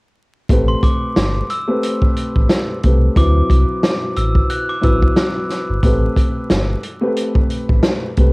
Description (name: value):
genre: hip hop, boom-bap hip-hop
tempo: 90 BPM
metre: 4/4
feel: swing 57% on 16ths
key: A dorian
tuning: A4 = 440 Hz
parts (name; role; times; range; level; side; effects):
- dark upright piano; accompaniment; 0.5-8.3 s; F#3 to B4; -20 LUFS; left 1 dB; high-pass filter, low-pass filter, cassette tape
- sub bass with octave; bass; 0.5-8.3 s; G1 to D2; -16 LUFS; equal; none
- vintage drum kit; drums; 0.5-8.3 s; hi-hat, kick drum, snare drum; -16 LUFS; equal; cassette tape
- glockenspiel with brass mallets; melody; 0.7-5.8 s; C6 to F#6; -25 LUFS; equal; high-pass filter, low-pass filter, cassette tape
room: little or no reverb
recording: home recording on cassette, vinyl crackle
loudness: -14 LUFS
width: side -27 dB against mid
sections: 0.5-8.3 A section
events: none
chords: 0.5 Am9; 3.2 D13; 5.8 Am9